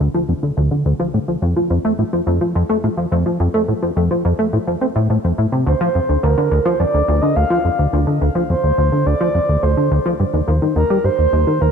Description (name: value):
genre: ambient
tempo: 106 BPM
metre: 4/4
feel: straight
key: D phrygian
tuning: A4 = 440 Hz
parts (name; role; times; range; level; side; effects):
- plucky analog bass; riff; 0.0-11.7 s; D2 to C4; -16 LUFS; equal; wide subtle chorus, ping-pong delay
- breathy flute-like synth lead; melody; 5.7-11.7 s; Bb4 to F5; -18 LUFS; right 2 dB; chorus, tremolo, ping-pong delay
room: moderate plate reverb, RT60 3.1 s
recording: none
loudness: -15 LUFS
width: side -6 dB against mid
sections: 0.0-11.7 A section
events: none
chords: 0.0 Dm; 1.1 F; 5.7 Dm7; 10.2 Eb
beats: 0.00 0.57 | 1.14 1.70 2.27 2.83 | 3.40 3.97 4.53 5.10 | 5.66 6.23 6.80 7.36 | 7.93 8.49 9.06 9.63 | 10.19 10.76 11.32